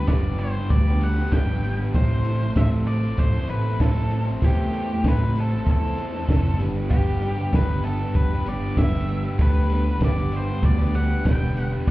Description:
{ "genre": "indie rock", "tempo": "97 BPM", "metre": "4/4", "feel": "straight", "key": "G major", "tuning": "A4 = 441 Hz", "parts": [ { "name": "octave-fuzz lead guitar", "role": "melody", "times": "0.0-11.9 s", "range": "G4 to G5", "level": "-32 LUFS", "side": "left 1 dB", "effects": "distortion, plate reverb, analog delay" }, { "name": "overdriven semi-hollow guitar", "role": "riff", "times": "0.0-11.9 s", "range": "A2 to C5", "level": "-31 LUFS", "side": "left 6 dB", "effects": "none" }, { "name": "raw garage guitar", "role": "riff", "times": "0.0-11.9 s", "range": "G2 to A4", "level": "-30 LUFS", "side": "right 5 dB", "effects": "overdrive, wide subtle chorus" }, { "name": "modern bright picked electric bass", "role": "bass", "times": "0.1-11.9 s", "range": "E1 to E2", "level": "-22 LUFS", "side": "equal", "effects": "none" }, { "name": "compact cocktail drum kit", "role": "drums", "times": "0.1-11.9 s", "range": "hi-hat, kick drum, snare drum", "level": "-22 LUFS", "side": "equal", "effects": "none" } ], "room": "little or no reverb", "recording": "heard muffled through a wall, club reverb, EQ", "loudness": "-20 LUFS", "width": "side -17 dB against mid", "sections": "0.0-11.9 A section", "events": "none", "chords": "0.0 G; 2.0 Am; 6.6 G", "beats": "0.10 0.72 1.34 | 1.96 2.58 3.20 3.82 | 4.44 5.06 5.68 6.30 | 6.92 7.54 8.16 8.79 | 9.41 10.03 10.65 11.27 | 11.89" }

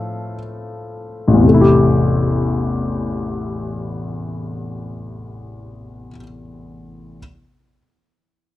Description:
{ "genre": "pop", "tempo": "37 BPM (dotted quarters)", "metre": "6/8", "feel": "straight", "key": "A minor", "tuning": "A4 = 440 Hz", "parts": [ { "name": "clear grand piano", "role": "accompaniment", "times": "0.0-7.2 s", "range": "A1 to F5", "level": "-16 LUFS", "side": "left 2 dB", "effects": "none" } ], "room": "studio reverb", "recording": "dry, close 1970s-style studio recording", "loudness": "-15 LUFS", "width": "side -15 dB against mid", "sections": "0.0-1.4 A section; 1.4-4.7 B section", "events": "slowing down 0.0-1.4; grand piano solo 0.0-1.4", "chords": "0.0 F/A; 1.4 Am7", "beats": "| 1.44 3.06" }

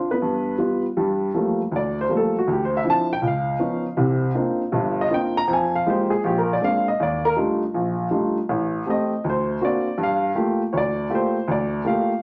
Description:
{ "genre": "solo jazz", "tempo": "160 BPM", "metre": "4/4", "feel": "swing 65% on 8ths", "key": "G minor", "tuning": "A4 = 439 Hz", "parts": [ { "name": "warm upright piano", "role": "solo", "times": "0.0-12.2 s", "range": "G1 to Bb5", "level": "-22 LUFS", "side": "equal", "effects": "none" } ], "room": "wet club reverb, RT60 0.8 s", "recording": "none", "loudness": "-22 LUFS", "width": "mono", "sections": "1.0-12.2 A section", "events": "upright piano solo 1.0-12.2", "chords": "0.2 G7; 1.0 Gm9; 2.5 Dm9; 3.2 C#9; 4.0 Cm11; 5.5 Fm11; 6.2 Bb9; 7.0 Ebmaj9#11; 8.5 Am7b5; 9.2 Daug7; 10.0 Gm9", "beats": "0.22 0.60 | 0.97 1.35 1.72 2.10 | 2.47 2.85 3.23 3.60 | 3.98 4.35 4.73 5.10 | 5.48 5.85 6.23 6.60 | 6.98 7.36 7.73 8.11 | 8.48 8.86 9.23 9.61 | 9.98 10.36 10.73 11.11 | 11.48 11.86" }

